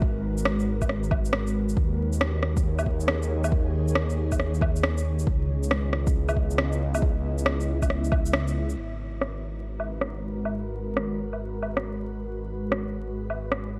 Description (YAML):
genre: future garage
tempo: 137 BPM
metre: 4/4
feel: swing 65% on 16ths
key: G# minor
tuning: A4 = 440 Hz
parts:
  - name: ethereal airy pad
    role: sustained chords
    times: 0.0-13.8 s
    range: C#3 to E5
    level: -35 LUFS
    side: equal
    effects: ensemble chorus, built-in reverb, sidechain pumping
  - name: swelling detuned saw bass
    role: bass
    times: 0.0-13.8 s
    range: G#1 to D#2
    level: -30 LUFS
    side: equal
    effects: sidechain pumping
  - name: electronic kick drum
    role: drums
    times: 0.0-8.2 s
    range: none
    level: -28 LUFS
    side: equal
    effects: overdrive
  - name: organic electronic drum kit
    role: drums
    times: 0.4-13.6 s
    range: crash cymbal, rim click, shaker, woodblock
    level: -32 LUFS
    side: equal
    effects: overdrive, low-pass filter on perc, low-pass filter on snare, low-pass filter on cymbals, low-pass filter on room
room: little or no reverb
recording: dry, gritty hardware recording, vinyl crackle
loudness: -27 LUFS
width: mono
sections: 0.0-8.8 A section; 8.8-13.8 B section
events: band accent 8.3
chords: 0.0 G#m9; 1.8 D#7sus4; 5.3 C#m9; 8.8 G#m9